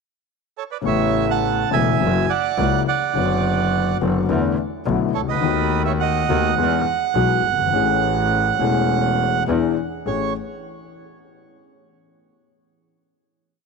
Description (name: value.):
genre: tango.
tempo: 104 BPM.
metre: 4/4.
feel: rubato.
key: A major.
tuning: A4 = 439 Hz.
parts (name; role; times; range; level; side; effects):
bandoneon; melody; 0.6-10.3 s; A4 to A5; -21 LUFS; right 13 dB; none.
dark concert grand piano; accompaniment; 0.8-10.3 s; E1 to G#4; -22 LUFS; left 11 dB; none.
bright double bass; bass; 0.8-10.3 s; E1 to E2; -24 LUFS; right 2 dB; none.
room: light reverb, small room ambience.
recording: 1960s-style stereo with parts hard left and right.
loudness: -17 LUFS.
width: side -4 dB against mid.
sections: 0.0-0.8 pickup bar; 0.8-10.1 A section; 10.1-12.3 final chord.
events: none.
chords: 0.0 N.C.; 0.8 Aadd9; 2.0 F#7; 3.2 Bm/F#; 4.3 E7sus4; 5.4 B7/D#; 6.6 E; 7.7 Amaj7; 9.5 E7; 10.1 Amaj7.